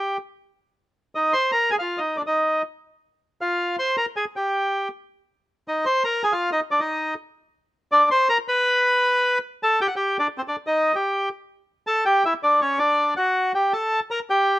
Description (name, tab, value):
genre	tango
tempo	160 BPM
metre	3/4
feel	rubato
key	C minor, G harmonic minor from 9.6 s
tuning	A4 = 440 Hz
part	bandoneon	solo	0.0-14.6 s	C4 to C6	-19 LUFS	equal	none
room	light reverb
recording	close, detailed microphones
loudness	-20 LUFS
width	side -16 dB against mid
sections	0.6-9.6 A section; 9.6-14.6 B section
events	none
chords	0.0 N.C.; 0.6 Cm; 1.7 N.C.; 2.8 F5; 4.0 Gm; 4.7 N.C.; 5.1 Cm; 6.2 Fm; 7.4 Bbadd9/D; 8.5 N.C.; 9.6 Gsus2; 10.7 Eb; 11.9 A7; 13.0 D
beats	0.21 | 0.59 0.96 1.34 | 1.72 2.09 2.47 | 2.84 3.22 3.59 | 3.97 4.35 4.72 | 5.10 5.48 5.86 | 6.23 6.61 6.98 | 7.35 7.73 8.10 | 8.48 8.85 9.23 | 9.61 9.99 10.37 | 10.74 11.12 11.49 | 11.87 12.24 12.61 | 12.99 13.36 13.74 | 14.12 14.50